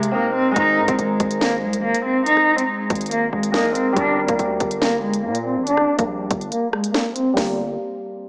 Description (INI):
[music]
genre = hip hop, drill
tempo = 141 BPM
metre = 4/4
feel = half-time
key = unclear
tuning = A4 = 438 Hz
[part]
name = warm cello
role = melody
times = 0.0-7.6 s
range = G3 to Eb4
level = -19 LUFS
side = equal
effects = low-pass filter, tape echo
[part]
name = Celtic harp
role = accompaniment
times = 0.0-7.6 s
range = C3 to Eb5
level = -24 LUFS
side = equal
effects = low-pass filter
[part]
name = distorted 808-style bass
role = bass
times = 0.0-7.8 s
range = G1 to C3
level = -28 LUFS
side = equal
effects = distortion
[part]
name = drill drum kit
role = drums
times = 0.0-7.5 s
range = hi-hat, kick drum, rim click, snare drum, toms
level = -24 LUFS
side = equal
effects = none
[sound]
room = moderate lush hall reverb, RT60 1.6 s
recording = dreamy mix soaked in reverb, small speaker sound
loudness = -17 LUFS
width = side -30 dB against mid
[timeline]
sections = 0.6-7.4 A section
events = silent gap 0.1-0.6; filter sweep 0.6-7.4; kick muted 6.5-7.4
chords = 0.0 Cm7; 0.6 Abadd9; 4.0 Gm